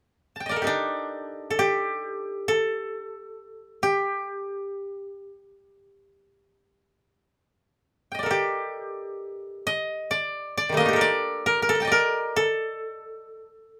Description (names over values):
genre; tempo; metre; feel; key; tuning
japanese traditional; free time; none; none; G hirajoshi; A4 = 443 Hz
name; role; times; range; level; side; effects
koto; melody; 0.4-13.8 s; Eb3 to Bb5; -26 LUFS; equal; none
room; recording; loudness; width
light reverb; none; -26 LUFS; mono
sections
0.0-8.3 A section; 8.3-13.8 B section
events
none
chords
none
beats
free time